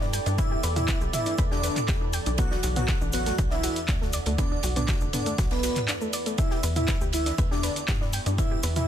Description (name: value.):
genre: melodic techno.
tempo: 120 BPM.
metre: 4/4.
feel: straight.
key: E minor.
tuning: A4 = 438 Hz.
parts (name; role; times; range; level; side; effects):
soft round pluck; arpeggios; 0.0-8.8 s; A3 to G6; -35 LUFS; equal; chorus, cassette tape, sidechain pumping, dub echo.
tight sequencer bass; bass; 0.0-8.9 s; F#1 to G2; -29 LUFS; equal; sidechain pumping.
overtone-sweeping drone; drone; 0.0-8.9 s; E2; -41 LUFS; equal; none.
big rock drum kit; drums; 0.0-8.8 s; ride cymbal, snare drum; -40 LUFS; right 3 dB; sidechain pumping on cymbals, high-pass filter on cymbals, high-pass filter on snare, high-pass filter on room.
deep dark ambient pad; texture; 0.0-8.9 s; E4 to G5; -37 LUFS; right 1 dB; chorus, built-in reverb, sidechain pumping.
punchy analog drum machine; drums; 0.1-8.9 s; handclaps, hi-hat, toms; -32 LUFS; right 1 dB; none.
cabasa; percussion; 0.1-8.9 s; none; -38 LUFS; left 2 dB; none.
fat analog lead; melody; 0.4-8.9 s; B3 to F#4; -33 LUFS; equal; wide subtle chorus, sidechain pumping, ping-pong delay.
airy dreamy lead; second line; 0.4-8.9 s; B4 to F#5; -35 LUFS; right 1 dB; chorus, sidechain pumping, dub echo.
electronic kick drum; drums; 0.4-8.5 s; none; -27 LUFS; equal; none.
room: little or no reverb.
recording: dense, heavily limited modern master.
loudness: -23 LUFS.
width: side -10 dB against mid.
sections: 0.0-8.9 A section.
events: break 5.9-6.4.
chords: 0.0 Em; 2.4 Bm; 6.4 Em.